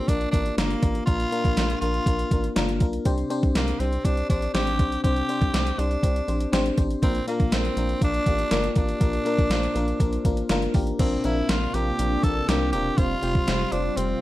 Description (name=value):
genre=1980s-style pop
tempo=121 BPM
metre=4/4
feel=straight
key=unclear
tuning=A4 = 440 Hz
part: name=raspy tenor saxophone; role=melody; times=0.0-14.2 s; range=Bb3 to A4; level=-28 LUFS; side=equal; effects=slapback echo
part: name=FM electric piano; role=accompaniment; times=0.0-14.2 s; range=Bb2 to C5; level=-27 LUFS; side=left 2 dB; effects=chorus
part: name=rubbery square bass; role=bass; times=0.1-14.1 s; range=E1 to C2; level=-28 LUFS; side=equal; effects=none
part: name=gated 80s digital drum machine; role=drums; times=0.1-14.1 s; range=crash cymbal, hi-hat, kick drum, snare drum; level=-24 LUFS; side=equal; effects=gated reverb, gated reverb snare, overdrive
part: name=brassy analog pad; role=sustained chords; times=11.0-14.2 s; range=C3 to F4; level=-31 LUFS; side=right 1 dB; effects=chorus
room=light reverb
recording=dry, close 1970s-style studio recording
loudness=-21 LUFS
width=side -16 dB against mid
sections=0.0-11.0 A section; 11.0-14.2 B section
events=none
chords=0.0 Bb; 3.1 Csus2; 7.0 Bb; 11.0 Bbadd9; 13.0 Fsus2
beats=0.09 0.58 | 1.08 1.57 2.07 2.56 | 3.06 3.56 4.05 4.55 | 5.04 5.54 6.04 6.53 | 7.03 7.52 8.02 8.52 | 9.01 9.51 10.00 10.50 | 10.99 11.49 11.99 12.48 | 12.98 13.47 13.97